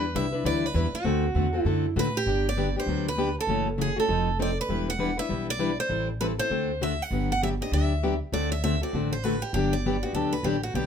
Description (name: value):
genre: acoustic string swing (jazz manouche)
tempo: 198 BPM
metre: 4/4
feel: swing 60% on 8ths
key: G major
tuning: A4 = 440 Hz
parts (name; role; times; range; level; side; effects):
- picked steel-string acoustic guitar; melody; 0.0-10.9 s; F#4 to F#5; -29 LUFS; right 3 dB; none
- picked plugged-in steel-string acoustic guitar; accompaniment; 0.0-10.9 s; C#3 to B4; -28 LUFS; left 3 dB; none
- upright bass; bass; 0.0-10.9 s; E1 to A2; -30 LUFS; right 1 dB; none
room: light reverb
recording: close, detailed microphones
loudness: -24 LUFS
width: side -8 dB against mid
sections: 0.0-2.3 A section; 2.3-10.9 B section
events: none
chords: 0.0 Em7; 1.0 D7; 2.3 Gmaj7; 3.5 F#m7; 4.1 F7; 4.7 Em7; 5.9 Am7; 6.5 D7; 7.1 Gmaj7; 8.3 D7; 9.5 Gmaj7